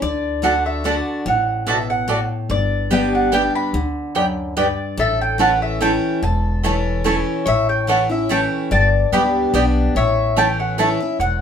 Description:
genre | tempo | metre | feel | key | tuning
bluegrass | 145 BPM | 3/4 | straight | A mixolydian | A4 = 440 Hz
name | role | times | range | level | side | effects
mandolin | melody | 0.0-11.4 s | C#5 to B5 | -22 LUFS | right 1 dB | none
picked steel-string acoustic guitar | accompaniment | 0.0-11.4 s | E2 to G4 | -22 LUFS | left 2 dB | none
upright bass | bass | 0.0-11.4 s | E1 to D2 | -23 LUFS | equal | none
mandolin | stabs | 0.4-10.9 s | A3 to A5 | -20 LUFS | right 3 dB | none
lap resonator guitar | second line | 5.0-11.4 s | A4 to D5 | -23 LUFS | left 6 dB | none
room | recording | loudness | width
wet studio ambience, RT60 0.5 s | band playing live in one room | -16 LUFS | side -8 dB against mid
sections
0.0-11.4 A section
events
none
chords
0.0 D; 2.5 G; 5.0 A; 8.7 G; 10.0 A

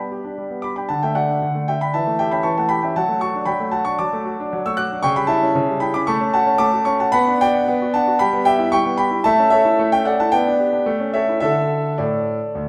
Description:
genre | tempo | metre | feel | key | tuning
classical-period piano sonatina | 114 BPM | 4/4 | rubato | D major | A4 = 441 Hz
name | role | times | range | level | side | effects
clear concert grand piano | solo | 0.0-12.7 s | D2 to F#6 | -19 LUFS | equal | none
room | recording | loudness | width
wet recital hall reverb, RT60 1.6 s | recorded in a church or concert hall | -19 LUFS | mono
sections
0.0-12.7 A section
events
none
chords
0.0 G; 0.9 D; 1.9 A7/E; 3.0 D/F#; 5.0 C#dim; 6.1 F#m/A; 7.2 Bm; 8.2 Em/G; 9.3 A; 10.3 G/B; 10.9 A7; 11.4 D

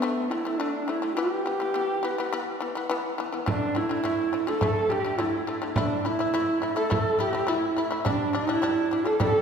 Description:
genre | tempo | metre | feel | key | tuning
mongolian traditional, Mongolian folk | 105 BPM | 4/4 | straight | unclear | A4 = 440 Hz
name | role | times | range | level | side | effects
dark horsehead fiddle | melody | 0.0-9.4 s | B3 to A4 | -26 LUFS | right 1 dB | none
shamisen | arpeggios | 0.0-9.4 s | D3 to E4 | -29 LUFS | left 3 dB | none
frame drum | percussion | 3.5-9.3 s | none | -31 LUFS | right 2 dB | none
room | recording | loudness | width
wet concert hall reverb, RT60 2.0 s | heard from further back in the room | -24 LUFS | side -6 dB against mid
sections
0.0-3.5 A section; 3.5-9.4 B section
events
none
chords
0.0 D5; 1.2 E5; 3.5 D5; 5.8 A5; 8.1 G5

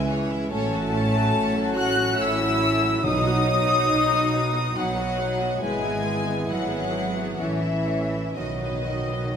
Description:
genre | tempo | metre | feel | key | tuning
classical, slow romantic movement for symphony orchestra | 61-72 BPM | 3/4 | rubato | unclear | A4 = 440 Hz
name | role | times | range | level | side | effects
warm symphonic violin section | melody | 0.0-9.4 s | D#5 to F#6 | -29 LUFS | left 3 dB | none
concert flute | second line | 0.0-9.4 s | D#5 to F#6 | -29 LUFS | left 3 dB | none
rich studio violin section | second line | 0.0-9.4 s | D#4 to E5 | -35 LUFS | left 2 dB | none
warm clarinet | second line | 0.0-9.4 s | B3 to C#4 | -34 LUFS | left 1 dB | none
warm bassoon | accompaniment | 0.0-9.4 s | E3 to F#3 | -31 LUFS | right 2 dB | none
warm studio viola section | accompaniment | 0.0-9.4 s | D#3 to G#4 | -34 LUFS | right 1 dB | none
mellow French horn section | sustained chords | 0.0-9.4 s | D#3 to F#4 | -29 LUFS | left 2 dB | none
warm symphonic cello section | bass | 0.0-9.4 s | D#3 to F#4 | -31 LUFS | right 2 dB | none
warm symphonic double bass section | bass | 0.0-9.4 s | G#1 to C#2 | -28 LUFS | right 2 dB | none
timpani | percussion | 3.0-4.3, 8.4-9.4 s | B2 | -36 LUFS | equal | none
room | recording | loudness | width
wet recital hall reverb, RT60 1.6 s | minimal, uncompressed stereo recording | -21 LUFS | side -7 dB against mid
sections
0.0-9.4 A section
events
timpani fill 8.4-9.4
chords
0.0 C#m; 0.5 F#m/A; 3.0 B; 5.6 E/G#; 7.4 A; 8.4 B

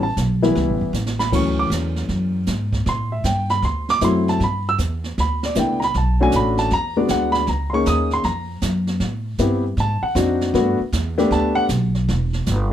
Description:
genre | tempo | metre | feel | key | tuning
jazz, small-group swing and bop | 156 BPM | 4/4 | swing 66% on 8ths | D major | A4 = 440 Hz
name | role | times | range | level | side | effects
dark baby grand piano | accompaniment | 0.0-11.7 s | E3 to E6 | -19 LUFS | left 1 dB | none
upright bass | bass | 0.0-12.7 s | E1 to A2 | -22 LUFS | equal | none
jazz brush drum kit | drums | 0.2-12.7 s | brushed snare drum, crash cymbal, hi-hat, kick drum, snare drum | -28 LUFS | right 3 dB | none
room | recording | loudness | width
light reverb | dark, warm production | -18 LUFS | side -10 dB against mid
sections
0.0-1.3 A section; 1.3-12.7 A section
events
drum fill 0.9-1.3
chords
0.0 A7(no3); 1.3 Dmaj7; 2.9 G69; 3.6 D7; 4.4 G69; 5.9 Bm7; 6.7 E9; 7.5 F#6; 9.0 Am7; 9.8 G#7#11; 10.5 Gmaj7; 12.1 Em

